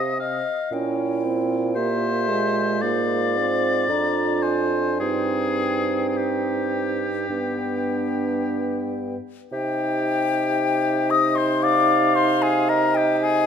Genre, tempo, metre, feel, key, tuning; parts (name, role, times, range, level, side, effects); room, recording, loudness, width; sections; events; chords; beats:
classical, slow romantic movement for wind quintet; 51-58 BPM; 4/4; rubato; C minor; A4 = 443 Hz
mellow hollow silver concert flute; melody; 0.0-13.5 s; Eb5 to Eb6; -26 LUFS; left 9 dB
clear oboe; second line; 0.0-13.5 s; G4 to F5; -26 LUFS; left 4 dB
clear French horn; accompaniment; 0.0-13.5 s; Ab3 to Eb4; -26 LUFS; equal
warm clarinet; accompaniment; 0.0-13.5 s; D4 to F5; -26 LUFS; right 9 dB
mellow bassoon; bass; 0.0-13.5 s; F2 to C3; -27 LUFS; right 3 dB
moderate scoring stage reverb, RT60 1.9 s; -20 LUFS; side -7 dB against mid
0.0-9.5 A section; 9.5-13.5 B section
0.0 Cm; 0.7 C7/Bb; 2.8 Fm/Ab; 5.0 Cm/G; 7.3 G; 9.5 Cm
| 0.72 1.76 2.82 3.89 | 5.00 6.16 7.29 8.41 | 9.53 10.59 11.63 12.70